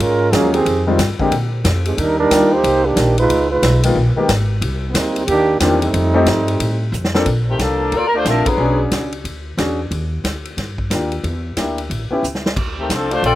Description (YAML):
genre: jazz, big band swing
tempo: 181 BPM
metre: 4/4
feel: swing 63% on 8ths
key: Bb major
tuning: A4 = 444 Hz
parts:
  - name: clear trombone section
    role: second line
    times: 0.0-6.9 s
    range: Eb3 to C5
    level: -16 LUFS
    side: right 2 dB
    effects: none
  - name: upright bass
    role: bass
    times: 0.0-13.4 s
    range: Ab1 to Bb2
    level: -20 LUFS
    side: equal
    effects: none
  - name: swinging big-band drum kit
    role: drums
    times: 0.0-13.3 s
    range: crash cymbal, hi-hat, kick drum, ride cymbal, snare drum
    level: -23 LUFS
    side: equal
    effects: none
  - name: warm grand piano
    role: accompaniment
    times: 0.3-12.2 s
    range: D3 to A4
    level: -19 LUFS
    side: left 2 dB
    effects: slapback echo
  - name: warm saxophone section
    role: melody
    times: 7.5-8.8, 12.8-13.4 s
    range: Eb3 to D5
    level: -16 LUFS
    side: left 1 dB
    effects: none
room: little or no reverb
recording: recorded outdoors, with no room sound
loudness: -14 LUFS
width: side -15 dB against mid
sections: 0.0-7.3 A section; 7.3-13.4 B section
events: trombone section solo 0.0-7.3; drum fill 6.9-7.3, 12.2-12.6; band accent 8.4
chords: 0.0 Gbmaj9; 0.7 Fm9; 1.3 Bb5; 2.0 Ebmaj7; 3.3 Db13; 4.6 Cm9; 5.9 F9; 7.3 Bbmaj7; 8.6 E13; 9.9 Ebmaj7; 11.2 Em7b5; 11.9 A7; 12.6 Dm7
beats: 0.00 0.33 | 0.66 0.99 1.32 1.65 | 1.98 2.31 2.64 2.97 | 3.30 3.63 3.96 4.29 | 4.62 4.95 5.28 5.61 | 5.94 6.27 6.60 6.93 | 7.26 7.59 7.92 8.25 | 8.59 8.92 9.25 9.58 | 9.91 10.24 10.57 10.91 | 11.24 11.57 11.90 12.23 | 12.56 12.90 13.23